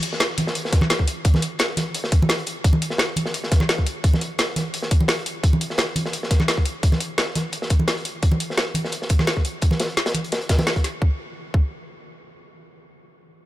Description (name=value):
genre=drum and bass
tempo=172 BPM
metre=4/4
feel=swing 53% on 16ths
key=none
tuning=none
part: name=crunchy breakbeat drum kit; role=drums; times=0.0-10.9 s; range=hi-hat, snare drum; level=-27 LUFS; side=equal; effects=high-pass filter on hats, high-pass filter on snare, high-pass filter on room
part: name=drum and bass drum kit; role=drums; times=0.0-10.9 s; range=hi-hat, snare drum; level=-25 LUFS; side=equal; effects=none
part: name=congas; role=percussion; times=0.4-10.7 s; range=none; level=-26 LUFS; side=right 1 dB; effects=none
part: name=electronic kick drum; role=drums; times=0.7-11.6 s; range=none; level=-18 LUFS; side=equal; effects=none
room=small room ambience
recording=none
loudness=-19 LUFS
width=side -15 dB against mid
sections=0.0-11.0 A section; 11.0-13.5 B section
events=none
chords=none